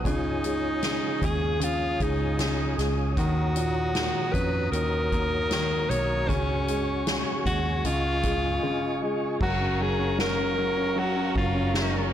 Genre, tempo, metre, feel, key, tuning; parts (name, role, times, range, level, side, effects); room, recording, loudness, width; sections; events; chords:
pop ballad; 77 BPM; 4/4; straight; F# major; A4 = 440 Hz
clear baby grand piano; accompaniment; 0.0-12.1 s; A#2 to C#4; -30 LUFS; equal
mellow tonewheel organ; sustained chords; 0.0-12.1 s; E#4 to D#6; -33 LUFS; left 1 dB; chorus vibrato, lush chorus
vintage muted fingered electric bass; bass; 0.0-12.1 s; F#1 to E#2; -30 LUFS; equal
breathy alto saxophone; melody; 0.1-12.1 s; C#4 to C#5; -28 LUFS; equal; ping-pong delay
soft-mallet drum kit; drums; 0.1-12.1 s; crash cymbal, hi-hat, kick drum, ride cymbal, snare drum; -31 LUFS; equal
light reverb, studio ambience; blown-out, overdriven recording, overdrive; -23 LUFS; side -10 dB against mid
0.0-9.4 A section; 9.4-12.1 B section
break 8.6-9.4
0.1 C#add9; 3.2 D#m7; 6.3 C#sus4; 7.8 C#add9; 9.4 F#maj7